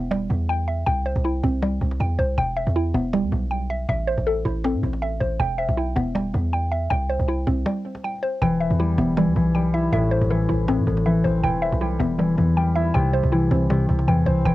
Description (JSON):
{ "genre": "hip hop, trap", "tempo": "159 BPM", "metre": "4/4", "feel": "half-time", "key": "E minor", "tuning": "A4 = 443 Hz", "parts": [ { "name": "mallet-like synth pluck", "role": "arpeggios", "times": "0.0-14.5 s", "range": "G3 to G5", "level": "-24 LUFS", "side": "equal", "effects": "chorus, phaser, low-pass filter, cassette tape, tape echo" }, { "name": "warm 808-style bass", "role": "bass", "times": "0.0-14.5 s", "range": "E1 to A2", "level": "-24 LUFS", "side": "equal", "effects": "none" }, { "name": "cajon", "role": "drums", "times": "0.0-14.5 s", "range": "none", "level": "-29 LUFS", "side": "right 1 dB", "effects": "none" }, { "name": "concert harp", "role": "accompaniment", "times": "8.4-14.5 s", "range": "A2 to E4", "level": "-20 LUFS", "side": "left 2 dB", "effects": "low-pass filter, cassette tape" } ], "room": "light reverb", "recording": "home recording on cassette", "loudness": "-19 LUFS", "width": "side -16 dB against mid", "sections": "0.0-14.5 A section", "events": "break 7.7-8.4", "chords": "0.0 Em; 0.9 C; 2.4 Em; 3.9 Am; 5.4 Em; 6.9 C; 8.4 Em; 9.9 Am; 11.4 Em; 12.9 C" }